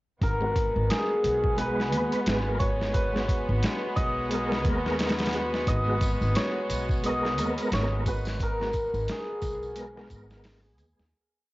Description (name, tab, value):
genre	trip hop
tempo	88 BPM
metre	4/4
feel	swing 58% on 16ths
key	G# minor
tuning	A4 = 440 Hz
part	cimbalom	melody	0.2-11.5 s	G#4 to D#5	-30 LUFS	equal	cassette tape, tape echo
part	warm chamber violin section	sustained chords	0.2-11.1 s	G#3 to F#4	-33 LUFS	left 1 dB	vintage 12-bit sampler grit, cassette tape
part	upright bass	bass	0.2-11.1 s	G#1 to D#2	-31 LUFS	equal	none
part	trip hop sampler-style drum kit	drums	0.2-11.1 s	hi-hat, kick drum, snare drum	-30 LUFS	equal	none
part	tonewheel organ	accompaniment	0.4-11.1 s	G#3 to B4	-31 LUFS	equal	chorus vibrato, fast rotary speaker, tremolo, cassette tape
part	tambourine and triangle	percussion	5.7-11.1 s	none	-47 LUFS	right 2 dB	none
room	light reverb, small room ambience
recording	home recording on cassette, nothing above 7.7 kHz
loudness	-24 LUFS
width	side -18 dB against mid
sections	0.2-11.1 groove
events	fade-out 7.5-11.1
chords	0.2 G#m7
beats	| 0.22 0.90 1.58 2.26 | 2.95 3.63 4.31 4.99 | 5.67 6.36 7.04 7.72 | 8.40 9.08 9.76 10.45